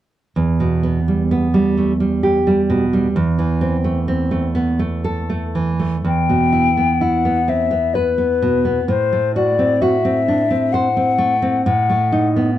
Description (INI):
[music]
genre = romantic duo for flute and classical guitar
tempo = 64 BPM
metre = 3/4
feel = rubato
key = E minor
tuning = A4 = 440 Hz
[part]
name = nylon-string guitar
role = accompaniment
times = 0.4-12.6 s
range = E2 to C5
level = -16 LUFS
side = right 2 dB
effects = none
[part]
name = hollow concert flute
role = melody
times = 6.1-12.3 s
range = B4 to G5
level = -17 LUFS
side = left 6 dB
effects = plate reverb
[sound]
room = light reverb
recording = dark, warm production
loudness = -15 LUFS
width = side -12 dB against mid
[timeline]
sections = 0.4-6.1 A section; 6.1-12.6 B section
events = none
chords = 0.4 Em; 3.2 Am/E; 6.1 Em; 8.9 F#dim/A; 11.7 B7/A